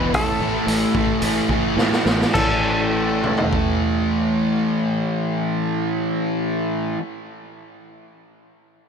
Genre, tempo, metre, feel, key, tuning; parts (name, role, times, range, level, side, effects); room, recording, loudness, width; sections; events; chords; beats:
rock, shoegaze and dream pop; 101-115 BPM; 4/4; straight; A4 = 440 Hz
direct-recorded clean electric guitar; melody; 0.0-6.9 s; A4 to B4; -27 LUFS; left 2 dB; slapback echo
fuzz guitar; riff; 0.0-7.0 s; E2 to A3; -20 LUFS; equal; distortion, lush chorus
fingered electric bass; bass; 0.0-6.9 s; E1 to A2; -27 LUFS; right 1 dB
raw garage drum kit; drums; 0.1-3.7 s; crash cymbal, hi-hat, kick drum, snare drum, toms; -22 LUFS; equal
moderate huge ambient reverb, RT60 4.5 s; -18 LUFS; side -6 dB against mid
0.0-2.4 A section; 2.4-7.1 B section
slowing down 0.0-2.4; drum fill 1.8-2.4
0.1 A5
| 0.13 0.66 1.21 1.77 | 2.35 2.94 3.53 4.12 | 4.71 5.30 5.90 6.49